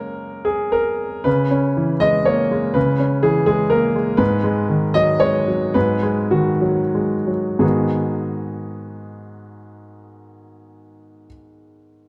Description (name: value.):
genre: neoclassical minimalist piano.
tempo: 86-125 BPM.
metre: 3/4.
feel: rubato.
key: G# minor.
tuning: A4 = 440 Hz.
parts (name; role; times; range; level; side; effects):
clear grand piano; solo; 0.0-12.1 s; G#2 to D#5; -19 LUFS; equal; none.
room: moderate concert hall reverb, RT60 2.3 s.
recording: dark, warm production.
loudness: -19 LUFS.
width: mono.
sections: 0.0-1.3 A section; 1.3-7.6 B section; 7.6-11.6 C section.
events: slowing down 3.5-7.6.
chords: 0.0 F#add9 (rootless); 1.3 C#m7; 4.2 G#m7.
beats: 0.20 0.73 | 1.26 1.76 2.26 | 2.75 3.24 3.72 | 4.20 4.70 5.21 | 5.75 6.31 6.93 | 7.61 8.28 8.95 | 9.62 10.28 10.95.